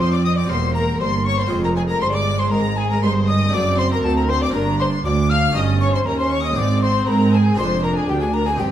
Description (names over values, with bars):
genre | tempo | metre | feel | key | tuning
classical, baroque-style concerto movement with solo episodes | 119 BPM | 4/4 | straight | unclear | A4 = 440 Hz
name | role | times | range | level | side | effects
mellow hollow alto recorder | melody | 0.0-8.7 s | G5 to F6 | -26 LUFS | left 2 dB | none
warm chamber violin section | melody | 0.0-8.7 s | G5 to F6 | -27 LUFS | left 4 dB | none
rich chamber violin section | second line | 0.0-8.7 s | G4 to F5 | -25 LUFS | left 3 dB | none
harpsichord | accompaniment | 0.0-8.7 s | D2 to Bb4 | -28 LUFS | equal | none
warm symphonic viola section | accompaniment | 0.0-8.7 s | Ab3 to D4 | -25 LUFS | right 1 dB | none
dark chamber double bass section | bass | 0.0-8.7 s | E1 to Ab2 | -22 LUFS | right 3 dB | none
rich chamber cello section | bass | 0.0-8.7 s | D2 to Ab3 | -22 LUFS | right 2 dB | none
room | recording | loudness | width
wet recital hall reverb, RT60 1.3 s | dark, warm production | -16 LUFS | side -11 dB against mid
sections
0.0-8.7 A section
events
none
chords
0.0 Fm; 0.5 C7/E; 1.5 Fm; 3.5 D7/F#; 4.5 Gm; 5.6 Eb7/G; 6.6 Ab; 7.6 Dm7b5/F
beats
0.50 1.01 | 1.51 2.02 2.52 3.03 | 3.54 4.04 4.55 5.05 | 5.56 6.07 6.57 7.08 | 7.58 8.09 8.60